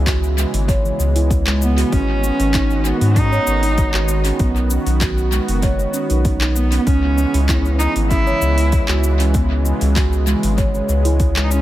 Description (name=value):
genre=organic downtempo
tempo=97 BPM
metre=4/4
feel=straight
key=C# minor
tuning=A4 = 440 Hz
part: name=warm analog pad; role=sustained chords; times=0.0-11.6 s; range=C#3 to F#4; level=-25 LUFS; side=right 1 dB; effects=chorus, sidechain pumping
part: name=round analog bass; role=bass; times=0.0-11.6 s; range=F#1 to G#2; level=-17 LUFS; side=equal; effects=sidechain pumping
part: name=steel tongue drum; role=arpeggios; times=0.1-11.6 s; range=G#3 to C#5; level=-23 LUFS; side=right 2 dB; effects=analog delay
part: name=deep house drum kit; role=drums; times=0.1-11.6 s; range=cabasa, handclaps, hi-hat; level=-26 LUFS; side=left 1 dB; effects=overdrive, tape echo
part: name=electronic kick drum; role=drums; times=0.1-11.3 s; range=none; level=-20 LUFS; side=equal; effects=overdrive
part: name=rich cello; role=melody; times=1.6-11.6 s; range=B3 to E4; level=-22 LUFS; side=equal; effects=analog delay
room=light reverb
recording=echo-heavy mix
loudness=-14 LUFS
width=side -14 dB against mid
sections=0.0-11.6 A section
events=none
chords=0.0 C#m7; 1.9 G#m7; 4.4 B; 6.9 C#m7